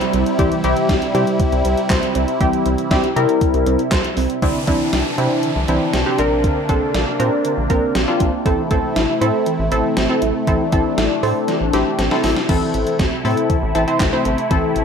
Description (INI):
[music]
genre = synth-pop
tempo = 119 BPM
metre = 4/4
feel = straight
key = unclear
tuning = A4 = 436 Hz
[part]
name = phased analog pad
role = sustained chords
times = 0.0-14.8 s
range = C3 to E4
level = -23 LUFS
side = left 1 dB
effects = phaser, chorus
[part]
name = soft round pluck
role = arpeggios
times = 0.0-14.7 s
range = D3 to C5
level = -24 LUFS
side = right 5 dB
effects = chorus, tape echo
[part]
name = gated 80s digital drum machine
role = drums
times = 0.0-14.8 s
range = crash cymbal, handclaps, hi-hat, kick drum, snare drum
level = -21 LUFS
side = equal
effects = gated reverb, gated reverb snare, overdrive
[part]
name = rubbery square bass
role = bass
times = 0.1-14.8 s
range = A1 to C3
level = -22 LUFS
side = equal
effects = none
[part]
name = funky polysynth comp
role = accompaniment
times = 0.4-14.8 s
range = G3 to C5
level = -19 LUFS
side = left 1 dB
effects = chorus
[part]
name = downlifter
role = sound effects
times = 4.4-8.5 s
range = none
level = -31 LUFS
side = right 2 dB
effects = none
[sound]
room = moderate plate reverb, RT60 1.7 s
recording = none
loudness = -15 LUFS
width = side -6 dB against mid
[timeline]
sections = 0.0-4.4 A section; 4.4-12.5 B section; 12.5-14.8 C section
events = drum fill 11.5-12.5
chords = 0.0 C; 4.4 Cadd9; 6.2 Bbadd9; 8.5 Am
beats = | 0.39 0.89 1.40 1.90 | 2.41 2.91 3.42 3.92 | 4.42 4.93 5.43 5.94 | 6.44 6.94 7.45 7.95 | 8.46 8.96 9.46 9.97 | 10.47 10.98 11.48 11.99 | 12.49 12.99 13.50 14.00 | 14.51